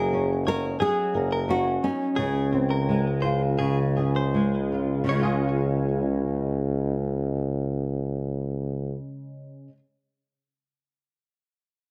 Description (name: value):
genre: acoustic pop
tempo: 77-90 BPM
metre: 4/4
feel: swing 55% on 16ths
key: Db major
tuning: A4 = 436 Hz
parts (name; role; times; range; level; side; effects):
- nylon-string guitar; melody; 0.0-4.3 s; Db4 to Bb4; -29 LUFS; equal; plate reverb
- flamenco guitar; accompaniment; 0.0-9.8 s; Db3 to Bb4; -31 LUFS; equal; double-tracked, plate reverb
- direct-recorded clean electric guitar; arpeggios; 0.0-7.4 s; Ab4 to Db5; -36 LUFS; equal; plate reverb, digital delay
- clear tuba; bass; 0.0-9.0 s; Gb1 to Db2; -28 LUFS; equal; none
room: light reverb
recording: none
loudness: -25 LUFS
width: mono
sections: 0.0-5.1 A section; 5.1-8.2 B section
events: slowing down 0.0-5.1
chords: 0.0 Gb6; 2.2 Dbmaj7; 5.1 Db